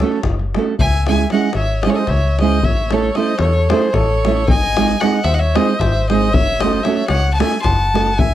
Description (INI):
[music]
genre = balkan folk, Balkan wedding band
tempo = 227 BPM (eighths)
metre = 7/8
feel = straight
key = F# dorian sharp4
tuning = A4 = 441 Hz
[part]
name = clear violin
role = melody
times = 0.0-8.3 s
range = B#4 to B#5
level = -20 LUFS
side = left 1 dB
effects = none
[part]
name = accordion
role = second line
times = 0.0-8.3 s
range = G#4 to G#5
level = -26 LUFS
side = left 1 dB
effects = none
[part]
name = nylon-string guitar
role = accompaniment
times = 0.0-8.1 s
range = G#3 to A4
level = -17 LUFS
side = right 7 dB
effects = none
[part]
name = metallic FM bass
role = bass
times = 0.0-8.3 s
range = F#1 to E2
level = -18 LUFS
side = left 1 dB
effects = none
[part]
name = davul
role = percussion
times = 0.0-8.3 s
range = none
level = -21 LUFS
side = left 3 dB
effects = none
[sound]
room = light reverb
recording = dry, close 1970s-style studio recording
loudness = -14 LUFS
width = side -12 dB against mid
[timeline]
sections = 0.8-8.3 A section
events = none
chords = 0.0 F#m; 0.8 C#m; 2.7 A; 4.5 G#; 6.4 F#m